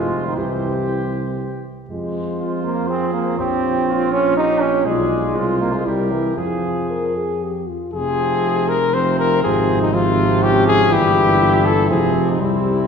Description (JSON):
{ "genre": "classical, brass quintet", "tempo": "120 BPM", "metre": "3/4", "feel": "straight", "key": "F minor", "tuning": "A4 = 440 Hz", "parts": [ { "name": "warm cornet", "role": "melody", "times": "0.0-12.9 s", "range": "Eb4 to D5", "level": "-21 LUFS", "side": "left 5 dB", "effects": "none" }, { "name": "mellow trumpet", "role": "second line", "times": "0.0-12.9 s", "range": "C4 to Ab4", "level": "-27 LUFS", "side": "right 5 dB", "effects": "none" }, { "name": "bright trombone", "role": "accompaniment", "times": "0.0-12.9 s", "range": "Bb2 to Eb4", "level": "-23 LUFS", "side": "right 2 dB", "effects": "none" }, { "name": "mellow French horn", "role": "accompaniment", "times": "0.0-12.9 s", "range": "E3 to Bb4", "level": "-23 LUFS", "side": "left 3 dB", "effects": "none" }, { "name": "dark tuba", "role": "bass", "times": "0.0-12.9 s", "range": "F1 to F2", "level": "-22 LUFS", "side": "right 3 dB", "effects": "none" } ], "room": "wet scoring stage reverb, RT60 1.9 s", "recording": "heard from further back in the room", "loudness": "-16 LUFS", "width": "side -6 dB against mid", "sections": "0.0-7.9 A section; 7.9-12.9 B section", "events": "none", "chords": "0.4 C; 1.9 Fm; 3.4 Bbm; 4.9 Bdim7; 5.4 Fm/C; 5.9 C7; 6.4 Fm; 9.4 Fm/Ab; 10.9 Edim/G; 11.9 Fm", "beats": "| 0.37 0.88 1.40 | 1.90 2.40 2.90 | 3.39 3.88 4.37 | 4.87 5.36 5.87 | 6.38 6.90 7.42 | 7.94 8.44 8.94 | 9.43 9.93 10.42 | 10.91 11.40 11.90 | 12.41" }